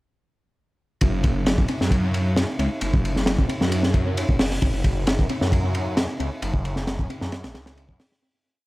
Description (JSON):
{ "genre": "breakbeat, breaks", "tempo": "133 BPM", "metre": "4/4", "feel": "straight", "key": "F# minor", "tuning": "A4 = 440 Hz", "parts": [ { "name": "phased detuned saw bass", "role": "bass", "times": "1.0-8.0 s", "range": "F#1 to F#2", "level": "-24 LUFS", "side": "equal", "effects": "phaser" }, { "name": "crunchy breakbeat drum kit", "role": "drums", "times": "1.0-8.2 s", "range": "hi-hat, kick drum, ride cymbal, snare drum", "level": "-22 LUFS", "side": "equal", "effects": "tape echo" } ], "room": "light reverb", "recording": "echo-heavy mix", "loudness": "-20 LUFS", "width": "side -19 dB against mid", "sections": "1.0-8.2 drop", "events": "drop 1.0-8.2; fade-out 5.8-8.2", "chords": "none", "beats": "| 1.01 1.46 1.91 2.37 | 2.82 3.27 3.72 4.17 | 4.62 5.07 5.52 5.97 | 6.42 6.88 7.33 7.78" }